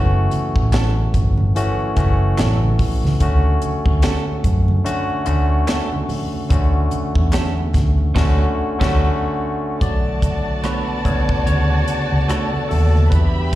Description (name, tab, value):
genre	lush 1970s-style soul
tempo	73 BPM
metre	4/4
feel	swing 58% on 16ths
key	B minor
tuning	A4 = 441 Hz
part	barky tine electric piano	accompaniment	0.0-13.6 s	C#3 to D5	-22 LUFS	left 1 dB	slapback echo
part	vintage muted fingered electric bass	bass	0.0-13.6 s	F#1 to F#2	-17 LUFS	equal	none
part	tight funk drum kit	drums	0.3-13.6 s	crash cymbal, hi-hat, kick drum, rim click, snare drum	-21 LUFS	equal	none
part	congas	percussion	0.3-13.5 s	none	-28 LUFS	right 3 dB	none
part	clean electric guitar	riff	0.7-12.5 s	F#3 to C#5	-28 LUFS	right 7 dB	analog chorus, slapback echo
part	group handclap	percussion	0.7-7.5 s	none	-36 LUFS	left 4 dB	none
part	dark studio violin section	second line	9.8-13.6 s	F#4 to B5	-25 LUFS	equal	slapback echo
room	small room ambience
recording	live gig heard through the venue's PA, recital hall reverb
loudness	-16 LUFS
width	side -15 dB against mid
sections	0.0-9.8 A section; 9.8-13.6 B section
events	band accent 8.2-9.8; tine electric piano solo 9.8-13.6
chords	0.0 F#m7; 3.2 Dmaj7; 9.8 Bm9